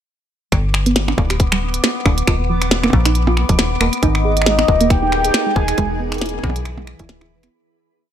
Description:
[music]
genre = IDM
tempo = 137 BPM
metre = 4/4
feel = swing 56% on 16ths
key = unclear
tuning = A4 = 441 Hz
[part]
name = soft round pluck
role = arpeggios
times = 0.5-7.5 s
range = E3 to Ab4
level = -22 LUFS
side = right 3 dB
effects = chorus, ping-pong delay
[part]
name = metallic FM bass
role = bass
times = 0.5-7.5 s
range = D1 to B1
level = -20 LUFS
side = equal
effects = none
[part]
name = electronic kick drum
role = drums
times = 0.5-7.1 s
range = none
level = -17 LUFS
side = equal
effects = none
[part]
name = glitchy drum kit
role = drums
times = 0.5-7.5 s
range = finger snaps, hi-hat, percussion blips, snare drum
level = -20 LUFS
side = right 1 dB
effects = none
[part]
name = bubbling stepped-filter texture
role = texture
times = 0.5-7.5 s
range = B3 to D6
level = -26 LUFS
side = left 1 dB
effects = chorus, built-in reverb
[part]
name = warm velvety synth lead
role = melody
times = 4.0-6.0 s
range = Eb5 to Ab5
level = -19 LUFS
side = equal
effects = chorus, tremolo, ping-pong delay
[part]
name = granular cloud pad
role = sustained chords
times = 4.7-7.5 s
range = E3 to B4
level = -26 LUFS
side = equal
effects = built-in reverb
[sound]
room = light reverb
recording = none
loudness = -14 LUFS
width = side -10 dB against mid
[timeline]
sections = 0.5-7.5 groove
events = filter sweep on synth arpeggio sound 0.5-7.5; fade-out 5.2-7.5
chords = 0.5 G; 2.3 Ebsus2; 4.0 Absus2; 5.8 E

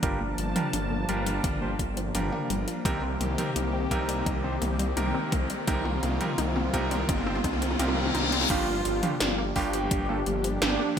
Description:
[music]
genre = synthwave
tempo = 85 BPM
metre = 4/4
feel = straight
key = G minor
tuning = A4 = 440 Hz
[part]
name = brassy analog pad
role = sustained chords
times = 0.0-11.0 s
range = Eb3 to A5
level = -33 LUFS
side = left 1 dB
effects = chorus, sidechain pumping, shimmer reverb
[part]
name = analog pluck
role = arpeggios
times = 0.0-11.0 s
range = F3 to Eb4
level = -36 LUFS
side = left 2 dB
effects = chorus, ping-pong delay, shimmer reverb
[part]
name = warm electric grand piano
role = stabs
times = 0.0-11.0 s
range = G2 to C5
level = -32 LUFS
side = right 2 dB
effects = low-pass filter, ping-pong delay, shimmer reverb
[part]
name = wide detuned saw bass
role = bass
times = 0.0-11.0 s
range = G1 to C2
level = -31 LUFS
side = equal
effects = chorus, sidechain pumping
[part]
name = 80s electronic pad drums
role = drums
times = 0.0-11.0 s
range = crash cymbal, hi-hat, snare drum, toms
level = -31 LUFS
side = left 1 dB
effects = gated reverb on snare and toms, overdrive, gated reverb
[part]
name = electronic kick drum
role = drums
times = 0.0-11.0 s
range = none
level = -30 LUFS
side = equal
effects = overdrive
[part]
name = riser and reverse cymbal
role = sound effects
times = 2.7-8.5 s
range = none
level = -35 LUFS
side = left 2 dB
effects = none
[part]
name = mellow synth brass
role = melody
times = 8.5-11.0 s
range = D4 to G4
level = -31 LUFS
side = right 2 dB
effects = chorus, digital delay, shimmer reverb
[part]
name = FM electric piano with soft pad layer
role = second line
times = 8.5-11.0 s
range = D4 to G4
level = -36 LUFS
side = right 1 dB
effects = none
[sound]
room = moderate plate reverb, RT60 2.7 s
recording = bright 1980s-style digital production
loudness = -25 LUFS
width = side -8 dB against mid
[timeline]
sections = 0.0-8.5 A section; 8.5-11.0 B section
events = drum fill 0.0-8.5; filter sweep on synth arpeggio sound 0.0-8.5; riser 2.7-8.5; reverse cymbal 7.1-8.5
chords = 0.0 Gm7; 2.9 Cm7; 8.5 Gm7

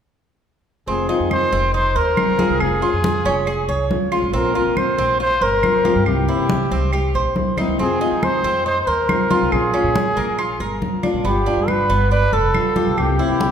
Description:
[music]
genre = latin, Cuban son and guajira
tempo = 139 BPM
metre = 4/4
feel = straight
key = F minor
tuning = A4 = 444 Hz
[part]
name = breathy trumpet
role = melody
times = 0.9-13.5 s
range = G4 to C5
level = -20 LUFS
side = equal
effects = none
[part]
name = nylon-string guitar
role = accompaniment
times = 0.9-13.5 s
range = C3 to F4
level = -24 LUFS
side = left 4 dB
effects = none
[part]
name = Cuban tres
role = arpeggios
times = 0.9-13.5 s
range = Bb3 to Db5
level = -24 LUFS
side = right 2 dB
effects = none
[part]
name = upright bass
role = bass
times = 0.9-13.5 s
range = F1 to F3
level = -23 LUFS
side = equal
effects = none
[part]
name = congas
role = percussion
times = 0.9-13.5 s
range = none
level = -25 LUFS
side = left 1 dB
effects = none
[part]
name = claves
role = percussion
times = 1.3-13.2 s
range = none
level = -31 LUFS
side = right 1 dB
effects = none
[sound]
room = wet recital hall reverb, RT60 1.5 s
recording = recorded in a church or concert hall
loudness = -16 LUFS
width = side -8 dB against mid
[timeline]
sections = 0.9-13.5 A section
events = none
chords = 0.9 Fm7; 2.6 Dbmaj7/F; 4.3 Bbadd9; 6.1 C7; 7.8 Fm7; 9.5 Bbm; 11.3 G7; 13.0 C7

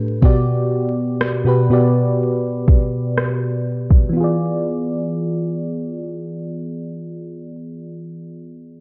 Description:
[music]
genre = contemporary R&B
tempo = 61 BPM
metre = 4/4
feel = straight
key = unclear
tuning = A4 = 441 Hz
[part]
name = mellow FM electric piano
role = accompaniment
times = 0.0-8.8 s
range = B2 to D5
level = -21 LUFS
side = equal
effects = chorus
[part]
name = smooth R&B drum kit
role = drums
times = 0.2-4.1 s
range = kick drum, rim click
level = -17 LUFS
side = equal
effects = none
[sound]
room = light reverb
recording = dark, warm production, vinyl crackle, low-pass filter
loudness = -19 LUFS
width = mono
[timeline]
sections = 0.0-4.2 A section; 4.2-8.1 B section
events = filter sweep 0.0-4.2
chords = 0.2 Gmaj7/B; 4.2 E7b9

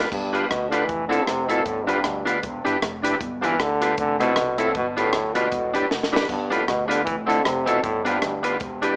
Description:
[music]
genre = ska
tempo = 155 BPM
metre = 4/4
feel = swing 58% on 8ths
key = G mixolydian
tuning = A4 = 440 Hz
[part]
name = electric guitar at the edge of break-up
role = accompaniment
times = 0.0-9.0 s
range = C4 to B4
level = -28 LUFS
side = equal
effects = none
[part]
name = overdriven tonewheel organ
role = stabs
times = 0.0-8.9 s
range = A3 to B4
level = -32 LUFS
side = equal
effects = chorus vibrato, slow rotary speaker
[part]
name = upright bass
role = bass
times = 0.0-8.9 s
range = E1 to D2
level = -38 LUFS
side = equal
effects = none
[part]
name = bright trombone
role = melody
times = 0.1-8.4 s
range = G2 to E3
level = -27 LUFS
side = equal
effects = dub echo, plate reverb
[part]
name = compact cocktail drum kit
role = drums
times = 0.1-8.9 s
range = crash cymbal, hi-hat, kick drum, rim click, snare drum, splash cymbal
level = -30 LUFS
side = equal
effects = none
[sound]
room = wet studio reverb, RT60 0.6 s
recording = small speaker sound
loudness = -23 LUFS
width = mono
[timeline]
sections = 0.1-9.0 A section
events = drum fill 5.9-6.3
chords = 0.1 G7; 0.9 Fmaj7; 1.7 G7; 2.4 Em7; 3.2 G7; 4.0 Fmaj7; 4.8 G7; 5.5 Em7; 6.3 G7; 7.1 Fmaj7; 7.8 G7

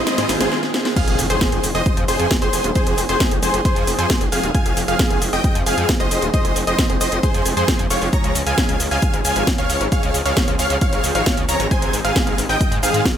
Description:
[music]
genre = uplifting trance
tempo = 134 BPM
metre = 4/4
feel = straight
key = F minor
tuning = A4 = 441 Hz
[part]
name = gritty driven synth bass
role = bass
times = 0.0-13.0 s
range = Eb1 to Ab2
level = -23 LUFS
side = equal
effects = sidechain pumping
[part]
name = riser and impact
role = sound effects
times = 0.0-2.8 s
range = none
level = -27 LUFS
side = equal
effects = none
[part]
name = big supersaw lead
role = melody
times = 0.1-13.1 s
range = F4 to Bb5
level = -22 LUFS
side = equal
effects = wide subtle chorus, sidechain pumping, ping-pong delay
[part]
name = techno drum kit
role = drums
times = 0.1-13.1 s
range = crash cymbal, hi-hat, shaker, snare drum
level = -22 LUFS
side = equal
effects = none
[part]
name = analog pluck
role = second line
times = 1.0-13.1 s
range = C5 to Bb5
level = -27 LUFS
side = left 1 dB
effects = chorus, sidechain pumping, ping-pong delay
[part]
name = electronic kick drum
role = drums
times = 1.0-13.1 s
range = none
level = -20 LUFS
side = equal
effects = none
[sound]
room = moderate plate reverb, RT60 2.0 s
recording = dreamy mix soaked in reverb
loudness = -16 LUFS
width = side -9 dB against mid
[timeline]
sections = 1.0-13.2 A section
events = drum fill 0.0-0.5, 0.5-1.0; riser 0.0-0.5; break 0.5-1.0; drop 1.0-13.2; impact 1.0-2.8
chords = 0.0 Ab; 1.0 Fm; 8.1 Db; 11.7 Ab

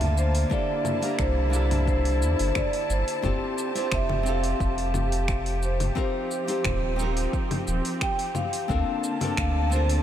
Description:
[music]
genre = sunset chillout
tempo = 88 BPM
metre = 4/4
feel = straight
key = F major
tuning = A4 = 441 Hz
[part]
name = vibraphone with medium mallets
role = melody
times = 0.0-9.9 s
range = C5 to G5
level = -30 LUFS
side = equal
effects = ping-pong delay
[part]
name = nylon-string guitar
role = accompaniment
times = 0.0-10.0 s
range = Bb3 to C5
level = -31 LUFS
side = moving between left 6 dB and right 4 dB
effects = auto-pan, ping-pong delay
[part]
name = muted studio string section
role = sustained chords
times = 0.0-10.0 s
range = D3 to A5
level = -32 LUFS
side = equal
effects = none
[part]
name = warm sub bass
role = bass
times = 0.0-10.0 s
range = Eb1 to E2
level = -25 LUFS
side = equal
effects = none
[part]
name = deep house drum kit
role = drums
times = 0.0-10.0 s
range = congas, finger snaps, hi-hat, shaker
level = -33 LUFS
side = left 1 dB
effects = overdrive
[part]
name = electronic kick drum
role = drums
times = 0.5-9.5 s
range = none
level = -30 LUFS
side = equal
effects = overdrive
[sound]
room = moderate huge ambient reverb, RT60 9.0 s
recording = dreamy mix soaked in reverb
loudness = -23 LUFS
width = side -10 dB against mid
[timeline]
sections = 0.0-10.0 A section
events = none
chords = 0.0 Bbmaj7/D; 0.5 C13; 3.2 Fmaj9; 6.0 Eb69; 8.7 Bbmaj7/D

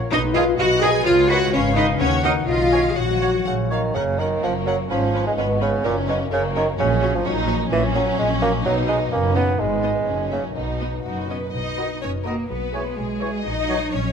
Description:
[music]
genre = cinematic, playful, whimsical film cue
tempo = 126 BPM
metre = 2/4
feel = straight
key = F# major, B major from 7.7 s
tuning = A4 = 440 Hz
[part]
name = concert flute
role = second line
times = 0.0-3.7, 11.8-13.7 s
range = B4 to G#5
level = -29 LUFS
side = left 2 dB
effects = none
[part]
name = concert harp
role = arpeggios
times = 0.0-14.1 s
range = F#2 to C#6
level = -28 LUFS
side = left 11 dB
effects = none
[part]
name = rich studio violin section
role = melody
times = 0.1-13.9 s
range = C#5 to G#5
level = -29 LUFS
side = left 3 dB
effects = none
[part]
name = rich studio viola section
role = accompaniment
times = 0.1-13.9 s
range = A#3 to C#5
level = -28 LUFS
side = right 1 dB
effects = none
[part]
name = mellow French horn section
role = sustained chords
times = 0.1-3.4, 11.8-13.8 s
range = C#4 to C#5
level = -25 LUFS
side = left 4 dB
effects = none
[part]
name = clear studio cello section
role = bass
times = 0.1-14.1 s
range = F#2 to G#4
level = -25 LUFS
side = right 2 dB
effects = none
[part]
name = rich studio double bass section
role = bass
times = 0.1-14.1 s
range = F#1 to D#2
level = -26 LUFS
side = right 3 dB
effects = none
[part]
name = warm oboe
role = second line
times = 0.4-3.8, 11.8-13.8 s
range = G#4 to D#5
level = -33 LUFS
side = right 2 dB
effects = none
[part]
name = warm studio violin section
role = second line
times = 0.4-14.1 s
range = A#3 to G#5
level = -28 LUFS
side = left 1 dB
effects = none
[part]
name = warm bassoon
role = accompaniment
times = 0.4-13.8 s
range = A#2 to B3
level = -24 LUFS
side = right 3 dB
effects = none
[sound]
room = moderate scoring stage reverb, RT60 2.0 s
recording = none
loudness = -18 LUFS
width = side -7 dB against mid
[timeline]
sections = 0.0-4.0 A section; 4.0-11.5 A section; 11.5-14.1 B section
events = none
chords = 0.1 G#m/B; 1.1 C#9; 2.0 D#m; 2.5 C#7/B; 3.0 F#/A#; 4.0 F#; 4.9 C#5/G#; 5.8 F#; 6.8 F#/A#; 8.6 B; 9.6 G#m; 10.1 F#; 10.6 B; 12.5 C#m7/B; 13.4 F#7/A#

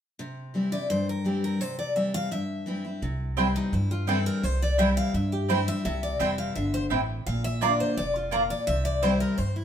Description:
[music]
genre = bluegrass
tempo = 170 BPM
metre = 4/4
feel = straight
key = C mixolydian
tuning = A4 = 439 Hz
[part]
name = picked steel-string acoustic guitar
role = accompaniment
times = 0.2-9.6 s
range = G2 to F4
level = -29 LUFS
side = left 1 dB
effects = none
[part]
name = picked steel-string acoustic guitar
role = melody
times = 0.7-9.6 s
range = Eb4 to F5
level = -30 LUFS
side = left 2 dB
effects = none
[part]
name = upright bass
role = bass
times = 3.0-9.6 s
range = F1 to G2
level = -29 LUFS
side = equal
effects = none
[part]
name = mandolin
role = stabs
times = 3.4-9.1 s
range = Bb3 to Bb5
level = -28 LUFS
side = right 4 dB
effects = none
[sound]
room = moderate stone room reverb, RT60 0.9 s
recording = band playing live in one room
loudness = -24 LUFS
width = side -9 dB against mid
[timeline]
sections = 0.2-3.0 A section; 3.0-9.6 B section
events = none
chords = 0.2 C; 7.3 Bb; 8.7 C

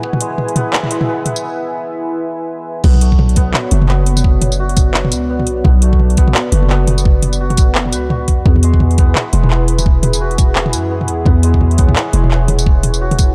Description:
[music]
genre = half-time drum and bass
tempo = 171 BPM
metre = 4/4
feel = swing 59% on 16ths, half-time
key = B dorian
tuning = A4 = 440 Hz
[part]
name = dark analog pad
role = sustained chords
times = 0.0-13.3 s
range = B3 to G#5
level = -24 LUFS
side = equal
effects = chorus, sidechain pumping
[part]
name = santur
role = arpeggios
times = 0.0-13.3 s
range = G#3 to B4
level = -27 LUFS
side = equal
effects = vintage 12-bit sampler grit, tape echo
[part]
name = electronic kick drum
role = drums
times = 0.0-0.1, 2.8-13.3 s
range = none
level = -14 LUFS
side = equal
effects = high-pass filter on kick, high-pass filter on room
[part]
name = drum and bass drum kit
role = drums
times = 0.1-13.3 s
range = crash cymbal, handclaps, hi-hat, tambourine, toms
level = -20 LUFS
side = equal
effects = none
[part]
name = growling 808-style bass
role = bass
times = 2.8-13.3 s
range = E1 to F#2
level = -16 LUFS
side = equal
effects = none
[sound]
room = little or no reverb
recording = dark, warm production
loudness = -14 LUFS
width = mono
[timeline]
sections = 0.0-2.8 A section; 2.8-13.3 B section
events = build-up 0.0-2.8; break 1.4-2.8; drop 2.8-13.3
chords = 0.0 E; 2.8 Bm; 8.5 E

